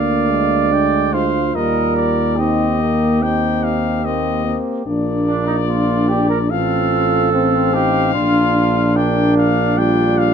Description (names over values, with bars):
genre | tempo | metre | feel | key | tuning
classical, brass quintet | 73 BPM | 4/4 | straight | Eb major | A4 = 440 Hz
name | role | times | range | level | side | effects
bright trumpet | melody | 0.0-10.3 s | D5 to G5 | -23 LUFS | left 13 dB | none
warm flugelhorn | second line | 0.0-10.3 s | D4 to D5 | -20 LUFS | right 7 dB | none
bright trombone | accompaniment | 0.0-10.3 s | G3 to Eb4 | -24 LUFS | right 2 dB | none
mellow French horn | accompaniment | 0.0-10.3 s | Bb3 to F4 | -22 LUFS | left 4 dB | none
mellow tuba | bass | 0.0-10.3 s | A1 to Eb2 | -18 LUFS | right 2 dB | none
room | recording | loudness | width
moderate large studio reverb, RT60 0.8 s | dark, warm production | -14 LUFS | side -7 dB against mid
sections
0.0-10.3 A section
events
none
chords
0.0 Bb/D; 1.6 Eb; 4.9 Bb; 6.5 F/A; 8.1 Bb